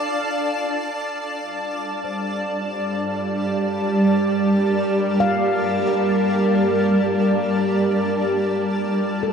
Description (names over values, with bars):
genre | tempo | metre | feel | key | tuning
ambient | free time | none | none | G minor | A4 = 440 Hz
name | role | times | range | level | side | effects
granular cloud pad | sustained chords | 0.0-9.3 s | G3 to A5 | -19 LUFS | right 1 dB | built-in reverb
handpan | arpeggios | 0.0-9.3 s | A4 to F5 | -29 LUFS | left 5 dB | ping-pong delay
room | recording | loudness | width
wet huge ambient reverb, RT60 8.2 s | dark, warm production | -19 LUFS | side -6 dB against mid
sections
0.0-1.1 A section; 1.1-9.3 B section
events
none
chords
0.0 Dm; 1.1 Gmadd9; 8.3 Dm